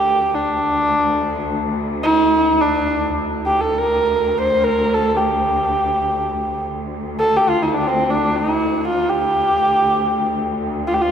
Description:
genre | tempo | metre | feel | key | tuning
Persian modal ensemble | free time | none | none | D dastgah shur | A4 = 440 Hz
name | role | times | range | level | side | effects
dark kamancheh | melody | 0.0-11.1 s | C4 to C5 | -16 LUFS | equal | none
muted studio cello section | drone | 0.0-11.1 s | D2 | -24 LUFS | equal | none
room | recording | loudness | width
wet church reverb, RT60 3.8 s | recorded in a church or concert hall | -16 LUFS | side -8 dB against mid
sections
0.0-3.2 A section; 3.2-11.1 A section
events
none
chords
none

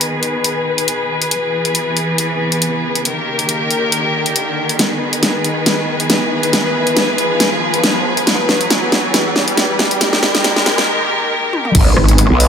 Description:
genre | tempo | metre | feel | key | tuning
heavy wobble dubstep | 138 BPM | 4/4 | swing 55% on 16ths, half-time | G# harmonic minor | A4 = 437 Hz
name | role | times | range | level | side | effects
rich studio string section | sustained chords | 0.0-12.5 s | D#3 to B4 | -17 LUFS | left 1 dB | sidechain pumping, low-pass filter
dubstep drum kit | drums | 0.0-12.5 s | crash cymbal, hi-hat, rim click, snare drum, toms | -16 LUFS | equal | none
riser and impact | sound effects | 0.2-12.5 s | none | -22 LUFS | equal | none
growl bass | bass | 11.7-12.5 s | G#1 to B1 | -13 LUFS | equal | chorus, overdrive
electronic kick drum | drums | 11.7-11.8 s | none | -12 LUFS | equal | none
pulsing pluck wobble bass | bass | 12.0-12.3 s | G#1 | -11 LUFS | equal | chorus, overdrive
room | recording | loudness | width
moderate lush hall reverb, RT60 1.7 s | high-pass filter | -13 LUFS | side -7 dB against mid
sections
0.0-11.7 A section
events
build-up 0.0-11.7; filter sweep on string section 0.0-11.7; riser 0.2-10.9; drum fill 4.8-10.9, 11.5; break 10.9-11.7; impact 11.7-12.5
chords
0.0 G#m; 1.3 E; 3.1 D#; 4.8 G#m; 8.3 E; 10.0 D#; 11.7 G#m

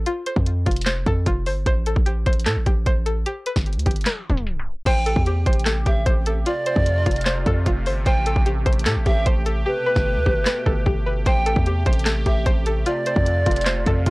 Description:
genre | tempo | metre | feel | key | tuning
hip hop, trap | 150 BPM | 4/4 | half-time | A minor | A4 = 443 Hz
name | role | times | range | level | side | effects
string-like resonator pluck | arpeggios | 0.0-14.1 s | F4 to C5 | -26 LUFS | left 1 dB | chorus, low-pass filter, analog delay
hard-hitting 808-style bass | bass | 0.0-14.1 s | F1 to A2 | -22 LUFS | equal | none
trap drum kit | drums | 0.1-14.1 s | crash cymbal, handclaps, hi-hat, kick drum, snare drum | -22 LUFS | equal | none
polished pan flute | second line | 4.9-14.0 s | B4 to G5 | -26 LUFS | right 1 dB | analog delay
sweeping resonant pad | sustained chords | 4.9-14.1 s | B2 to G4 | -30 LUFS | right 1 dB | chorus
room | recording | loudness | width
little or no reverb | dry, gritty hardware recording, cassette tape, tape stop | -18 LUFS | side -22 dB against mid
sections
0.0-4.9 A section; 4.9-14.1 B section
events
tape stop 4.1-4.9; hi-hats muted 9.7-11.3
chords
0.1 F; 1.7 Am7; 3.3 Gadd9; 4.9 Am7; 6.5 F; 8.1 Am7; 9.7 Gadd9; 11.3 Am7; 12.9 F

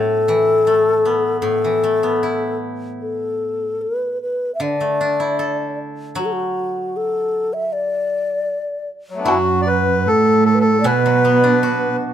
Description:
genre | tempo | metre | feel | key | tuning
chinese traditional, Chinese chamber ensemble | 76 BPM | 2/4 | rubato | unclear | A4 = 438 Hz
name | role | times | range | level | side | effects
mellow hollow xiao | melody | 0.0-12.0 s | F#4 to E5 | -18 LUFS | left 2 dB | none
steel-string zither | accompaniment | 0.0-12.1 s | A2 to A4 | -23 LUFS | equal | none
melodica | second line | 9.1-12.0 s | F#3 to D5 | -18 LUFS | left 3 dB | none
dark cello | second line | 9.2-12.0 s | F#2 to B2 | -18 LUFS | right 6 dB | none
woodblock | percussion | 9.3-11.0 s | none | -26 LUFS | equal | none
room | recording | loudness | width
light reverb | close, detailed microphones | -16 LUFS | side -10 dB against mid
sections
0.0-9.3 A section; 9.3-12.1 B section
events
none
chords
none

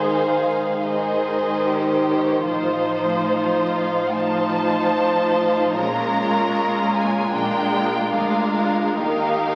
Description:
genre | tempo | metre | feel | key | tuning
classical, slow romantic movement for string orchestra | 67-78 BPM | 4/4 | rubato | unclear | A4 = 439 Hz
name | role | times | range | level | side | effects
warm studio violin section | melody | 0.0-9.6 s | C5 to Bb5 | -29 LUFS | equal | none
rich chamber violin section | second line | 0.0-9.6 s | F4 to C5 | -24 LUFS | equal | none
rich studio viola section | accompaniment | 0.0-9.6 s | Eb3 to Eb4 | -25 LUFS | equal | none
rich chamber cello section | bass | 0.0-9.6 s | D2 to Bb2 | -33 LUFS | equal | none
dark chamber double bass section | bass | 2.5-9.6 s | A1 to Eb2 | -44 LUFS | equal | none
room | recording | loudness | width
wet scoring stage reverb, RT60 1.9 s | very old 78 rpm record, vinyl crackle | -21 LUFS | mono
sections
0.0-9.6 A section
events
none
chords
0.0 Ab; 2.5 F7/A; 5.8 Bbm7; 7.3 Bb7; 9.0 Eb

